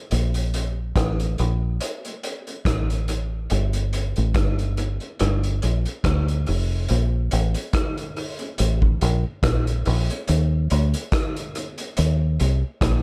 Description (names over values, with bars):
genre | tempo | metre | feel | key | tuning
lovers rock reggae | 71 BPM | 4/4 | swing 56% on 16ths | Bb major | A4 = 441 Hz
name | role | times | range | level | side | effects
deep dub fingered electric bass | bass | 0.1-13.0 s | F1 to Eb2 | -23 LUFS | equal | none
vintage drum kit | drums | 0.1-13.0 s | hi-hat, kick drum, rim click | -28 LUFS | equal | gated reverb, tape echo
room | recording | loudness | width
little or no reverb | none | -23 LUFS | mono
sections
0.0-6.9 A section; 6.9-13.0 B section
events
none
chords
none